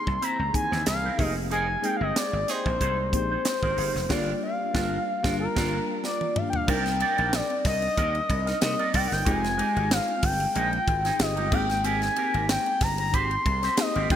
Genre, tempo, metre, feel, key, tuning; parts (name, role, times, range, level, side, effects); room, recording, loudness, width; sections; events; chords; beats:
polished 1980s jazz-funk pop; 93 BPM; 4/4; swing 54% on 16ths; C minor; A4 = 439 Hz
expressive synth lead; melody; 0.0-14.2 s; Bb4 to C6; -27 LUFS; left 1 dB; chorus
bell-like FM electric piano; accompaniment; 0.0-14.2 s; D#3 to Bb4; -32 LUFS; left 3 dB; ensemble chorus
electric guitar with an envelope filter; riff; 0.1-14.2 s; Ab3 to Eb5; -32 LUFS; right 5 dB; analog chorus
slap bass; bass; 0.1-14.2 s; F1 to C3; -30 LUFS; equal
tight funk drum kit; drums; 0.1-14.2 s; crash cymbal, hi-hat, kick drum, ride cymbal, snare drum, toms; -29 LUFS; right 1 dB; gated reverb
warm horn section; second line; 1.5-2.7 s; C4 to Ab4; -37 LUFS; right 4 dB
moderate lush hall reverb, RT60 3.0 s; bright 1980s-style digital production; -23 LUFS; side -10 dB against mid
0.0-6.7 A section; 6.7-14.2 B section
band accent 4.1-6.7; drum fill 6.0-6.7
0.0 C7alt; 1.2 Fm11; 4.1 Gm7; 6.7 Cm9; 9.3 Fm9; 11.5 Abmaj9
0.22 0.87 | 1.51 2.16 2.81 3.45 | 4.10 4.75 5.39 6.04 | 6.68 7.33 7.97 8.62 | 9.26 9.91 10.55 11.20 | 11.85 12.49 13.13 13.78